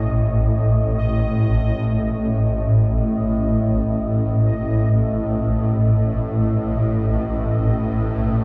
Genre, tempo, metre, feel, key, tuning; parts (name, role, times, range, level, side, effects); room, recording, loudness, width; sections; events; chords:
dark ambient drone; free time; A4 = 440 Hz
swarming drone; drone; 0.0-8.4 s; A1 to A2; -20 LUFS; equal; built-in reverb
bubbling stepped-filter texture; texture; 0.0-8.4 s; D#5; -32 LUFS; equal; chorus, built-in reverb
wet cathedral reverb, RT60 5.9 s; dark, warm production; -20 LUFS; mono
0.0-8.4 A section